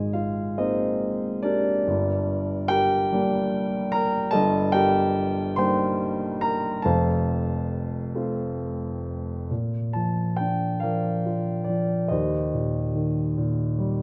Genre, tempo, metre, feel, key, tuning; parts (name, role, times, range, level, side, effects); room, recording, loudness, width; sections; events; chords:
classical, lyrical solo piano; 44-49 BPM (dotted quarters); 6/8; rubato; Bb major; A4 = 436 Hz
dark baby grand piano; solo; 0.0-14.0 s; F1 to C6; -25 LUFS; equal
moderate concert hall reverb, RT60 1.8 s; -25 LUFS; mono
0.0-9.5 A section; 9.5-14.0 B section
0.0 Abadd9; 1.9 Gm; 4.3 Eb/G; 6.8 F; 9.5 Bb; 12.1 Eb6